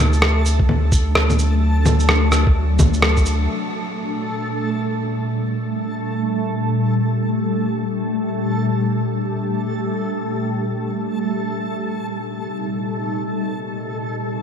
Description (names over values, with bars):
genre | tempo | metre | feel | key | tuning
future garage | free time | none | none | G harmonic minor | A4 = 440 Hz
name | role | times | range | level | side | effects
ethereal airy pad | sustained chords | 0.0-14.4 s | Bb2 to G4 | -22 LUFS | equal | ensemble chorus, built-in reverb, phaser, sidechain pumping
soft dub sub bass | bass | 0.0-3.5 s | D2 | -17 LUFS | equal | sidechain pumping
backwards swelling texture | texture | 0.0-14.4 s | A3 to A4 | -28 LUFS | equal | built-in reverb
electronic shaker, rim click and bongos | drums | 0.1-3.4 s | none | -20 LUFS | equal | low-pass filter on snare, low-pass filter on perc, low-pass filter on room
electronic kick drum | drums | 0.6-3.2 s | none | -17 LUFS | equal | none
room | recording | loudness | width
light reverb | none | -18 LUFS | side -7 dB against mid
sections
0.0-3.5 A section; 3.5-14.4 B section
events
band accent 3.0; filter sweep on ambient pad 3.5-14.4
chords
0.0 D7; 3.5 Gmadd9; 11.0 Cm7